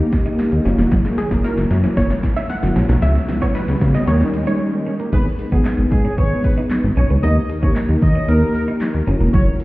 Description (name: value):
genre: dance-pop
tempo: 114 BPM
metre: 4/4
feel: straight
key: G# minor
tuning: A4 = 440 Hz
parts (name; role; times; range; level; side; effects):
- mellow tine electric piano; accompaniment; 0.0-9.6 s; G3 to B4; -22 LUFS; left 1 dB; sidechain pumping
- string machine, violins; sustained chords; 0.0-9.6 s; C#3 to A#4; -28 LUFS; equal; ensemble chorus, sidechain pumping
- guzheng; arpeggios; 0.0-7.3 s; D#3 to E5; -34 LUFS; left 3 dB; sidechain pumping, tape echo
- chorused synth bass; bass; 0.0-9.5 s; E1 to D#3; -16 LUFS; equal; sidechain pumping
- riser; sound effects; 0.0-4.6 s; none; -28 LUFS; right 2 dB; none
- twelve-string electric guitar; riff; 0.1-9.6 s; F#3 to D#4; -26 LUFS; right 2 dB; lush chorus
- punchy analog drum machine; drums; 0.1-9.6 s; crash cymbal, handclaps, hi-hat, kick drum, snare drum; -20 LUFS; equal; none
- tambourine; percussion; 0.1-9.6 s; none; -63 LUFS; right 5 dB; none
- wide unison pluck; melody; 1.2-4.8 s; G#4 to F#5; -26 LUFS; right 1 dB; auto-pan, tape echo
- warm horn section; melody; 5.1-9.4 s; G#4 to D#5; -26 LUFS; equal; sidechain pumping, tape echo
room: light reverb, digital ambience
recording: heard muffled through a wall, stone room reverb, EQ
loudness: -15 LUFS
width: side -19 dB against mid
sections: 0.0-5.1 A section; 5.1-9.6 B section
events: build-up 0.0-5.1; drum fill 0.0-4.6; riser 0.0-5.1; break 4.6-5.1; drop 5.1-9.6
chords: 0.0 D#; 0.7 F#7; 3.0 C#m7; 4.1 D#7; 5.1 G#m; 7.2 D#; 9.1 F#7